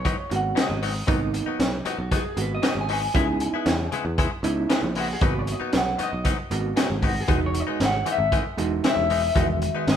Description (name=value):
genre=straight-eighth soul blues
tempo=116 BPM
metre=4/4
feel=straight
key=G# minor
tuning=A4 = 441 Hz
part: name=electric guitar through a small old amp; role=melody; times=0.0-10.0 s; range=F#4 to G#5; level=-28 LUFS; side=left 2 dB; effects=spring reverb
part: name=direct-recorded clean electric guitar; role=stabs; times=0.0-9.9 s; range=G#2 to E4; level=-30 LUFS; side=left 6 dB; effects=none
part: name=picked electric bass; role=bass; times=0.0-10.0 s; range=E1 to E2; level=-28 LUFS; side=equal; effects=none
part: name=crunchy breakbeat drum kit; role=drums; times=0.1-10.0 s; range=hi-hat, kick drum, snare drum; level=-25 LUFS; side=equal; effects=none
part: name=overdriven reed electric piano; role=accompaniment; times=0.3-10.0 s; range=D#3 to F#4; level=-29 LUFS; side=right 5 dB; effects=fast tremolo
room=moderate stone room reverb, RT60 0.9 s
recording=band playing live in one room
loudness=-21 LUFS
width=side -9 dB against mid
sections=0.0-10.0 A section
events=none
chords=0.0 G#m7; 3.1 C#m7; 5.2 G#m7; 7.3 Emaj7